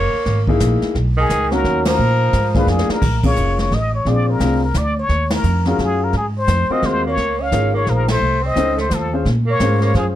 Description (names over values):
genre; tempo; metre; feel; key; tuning
jazz, small-group swing and bop; 173 BPM; 3/4; swing 62% on 8ths; Bb minor from 3.0 s; A4 = 441 Hz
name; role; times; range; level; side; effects
trumpet with plunger mute; melody; 0.0-10.1 s; Ab4 to F5; -21 LUFS; left 3 dB; none
breathy tenor saxophone; second line; 0.0-2.6, 6.7-10.0 s; D#3 to Db4; -22 LUFS; right 4 dB; none
upright bass; bass; 0.0-10.2 s; F1 to Bb2; -18 LUFS; right 1 dB; none
jazz brush drum kit; drums; 0.3-10.2 s; brushed snare drum, crash cymbal, hi-hat, kick drum, ride cymbal, snare drum; -24 LUFS; right 1 dB; none
warm grand piano; accompaniment; 0.5-10.1 s; Bb3 to C5; -21 LUFS; left 3 dB; none
room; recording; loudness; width
light reverb; dark, warm production; -15 LUFS; side -12 dB against mid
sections
0.0-3.0 A section; 3.0-10.2 B section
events
band accent 1.8, 3.2, 5.3, 8.0; drum fill 2.7-3.0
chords
0.0 Gb13; 1.0 Bmaj9; 2.0 Bb7; 3.0 Bbm7; 4.1 Bb7; 5.1 Ebm11; 6.1 Ab13; 7.2 Db6; 8.2 F7b13; 9.3 Bbm7